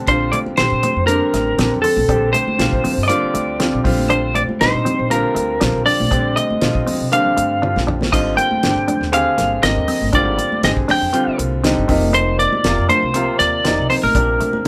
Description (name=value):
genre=electric jazz fusion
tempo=119 BPM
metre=4/4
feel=swing 53% on 16ths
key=Bb major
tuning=A4 = 438 Hz
part: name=clear concert grand piano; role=accompaniment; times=0.0-14.7 s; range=C3 to Ab4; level=-24 LUFS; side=equal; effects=none
part: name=clean electric guitar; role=stabs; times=0.0-14.6 s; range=A3 to Eb4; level=-28 LUFS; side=equal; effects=none
part: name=lightly driven lead guitar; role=melody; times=0.1-14.7 s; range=A4 to G5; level=-20 LUFS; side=equal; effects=none
part: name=upright bass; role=bass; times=0.1-14.7 s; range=F1 to C3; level=-25 LUFS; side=equal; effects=none
part: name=damped 70s drum kit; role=drums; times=0.1-14.7 s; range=hi-hat, kick drum, snare drum, splash cymbal, toms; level=-24 LUFS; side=equal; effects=none
part: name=congas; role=percussion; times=0.5-14.6 s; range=none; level=-30 LUFS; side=equal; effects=none
room=moderate studio ambience, RT60 0.5 s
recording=band playing live in one room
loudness=-17 LUFS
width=mono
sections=0.1-14.7 A section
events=drum fill 7.6-8.1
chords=0.1 Bbmaj9; 3.9 Ebmaj9#11/Bb (rootless); 8.1 Abmaj9#11; 11.9 F7sus4; 14.1 Bbmaj7